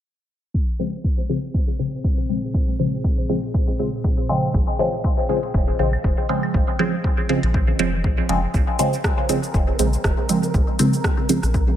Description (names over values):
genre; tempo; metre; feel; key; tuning
dub techno; 120 BPM; 4/4; swing 56% on 16ths; Bb minor; A4 = 440 Hz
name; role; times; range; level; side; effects
dark analog pad; sustained chords; 1.8-8.5 s; Bb2 to C5; -31 LUFS; equal; chorus, phaser, sidechain pumping
electronic kick drum; drums; 0.5-11.7 s; none; -21 LUFS; equal; overdrive
filtered dub chord stab; stabs; 0.8-11.4 s; Db3 to C4; -22 LUFS; equal; phaser, sidechain pumping, dub echo
deep house drum kit; drums; 0.8-11.7 s; cabasa, hi-hat, rim click; -28 LUFS; equal; overdrive, low-pass filter on hats, low-pass filter on perc, low-pass filter on snare, dub echo
soft dub sub bass; bass; 4.5-11.7 s; F1 to Bb1; -22 LUFS; equal; sidechain pumping
congas and claves; percussion; 4.8-8.0 s; none; -34 LUFS; left 3 dB; sidechain pumping on perc, dub echo
flickering grainy texture; texture; 9.4-11.8 s; Bb4; -33 LUFS; equal; built-in reverb, sidechain pumping
room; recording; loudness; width
light reverb, digital ambience; low-pass filter; -18 LUFS; side -11 dB against mid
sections
0.5-8.5 A section; 8.5-11.8 B section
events
filter sweep on drum 0.5-8.5; filter sweep on synth stab 0.5-8.5; filter sweep on analog synth pad 0.5-8.5; filter sweep 0.5-8.5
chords
0.5 Bbm9